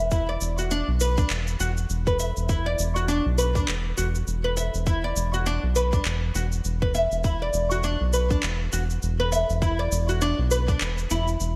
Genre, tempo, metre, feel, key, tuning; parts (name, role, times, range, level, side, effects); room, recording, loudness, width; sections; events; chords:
organic downtempo; 101 BPM; 4/4; swing 58% on 16ths; A4 = 440 Hz
oud; arpeggios; 0.0-11.3 s; D4 to E5; -29 LUFS; equal; digital delay
round analog bass; bass; 0.0-11.5 s; E1 to B1; -28 LUFS; equal
electronic kick drum; drums; 0.1-10.8 s; -27 LUFS; equal
electronic shaker and handclaps; drums; 0.1-11.5 s; -35 LUFS; equal; gated reverb
moderate plate reverb, RT60 2.2 s; bright 1980s-style digital production; -25 LUFS; mono
0.0-11.6 A section
break 11.4
0.0 E5